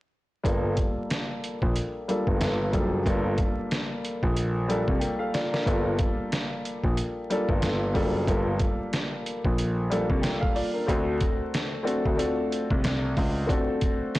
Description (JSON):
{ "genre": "hip hop, boom-bap hip-hop", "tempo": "92 BPM", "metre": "4/4", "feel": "swing 59% on 16ths", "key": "G minor", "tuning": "A4 = 441 Hz", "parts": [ { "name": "warm upright piano", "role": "accompaniment", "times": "0.4-14.2 s", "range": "G3 to G5", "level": "-28 LUFS", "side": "left 1 dB", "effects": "cassette tape, high-pass filter, low-pass filter" }, { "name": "trip hop sampler-style drum kit", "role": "drums", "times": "0.4-14.2 s", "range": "hi-hat, kick drum, snare drum", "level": "-28 LUFS", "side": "equal", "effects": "none" }, { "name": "dark concert grand piano", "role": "bass", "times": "0.5-13.5 s", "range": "F#1 to D2", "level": "-28 LUFS", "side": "equal", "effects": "tube saturation" } ], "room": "light reverb, small room ambience", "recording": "blown-out, overdriven recording, vinyl crackle, overdrive", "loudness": "-24 LUFS", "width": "side -18 dB against mid", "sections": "0.5-5.7 A section; 5.7-14.2 B section", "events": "filter sweep on upright piano 0.5-5.7; drum fill 5.0-5.7", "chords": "0.5 Gm7; 10.9 D7", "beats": "| 0.45 1.10 1.75 2.41 | 3.06 3.71 4.36 5.01 | 5.67 6.32 6.97 7.62 | 8.28 8.93 9.58 10.23 | 10.88 11.54 12.19 12.84 | 13.49 14.15" }